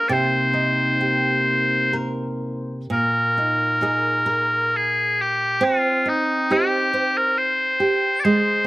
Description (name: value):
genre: celtic folk, Celtic slow air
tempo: 63-71 BPM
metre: 3/4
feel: rubato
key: C minor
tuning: A4 = 439 Hz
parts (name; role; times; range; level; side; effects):
- loud bright bagpipes; melody; 0.0-8.7 s; Eb4 to D5; -19 LUFS; left 1 dB; slapback echo
- flamenco guitar; accompaniment; 0.0-8.7 s; Bb2 to C5; -23 LUFS; right 2 dB; none
- mellow brass ensemble; sustained chords; 0.0-2.9 s; Bb3 to C5; -29 LUFS; left 1 dB; stereo widening
room: light reverb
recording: recorded outdoors, with no room sound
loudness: -18 LUFS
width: side -18 dB against mid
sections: 0.0-2.9 A section; 2.9-8.7 B section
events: none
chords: 0.1 Cm7; 2.9 Bb7sus4; 5.6 Cm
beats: | 0.11 1.01 1.95 | 2.90 3.81 4.72 | 5.61 6.49 7.36 | 8.22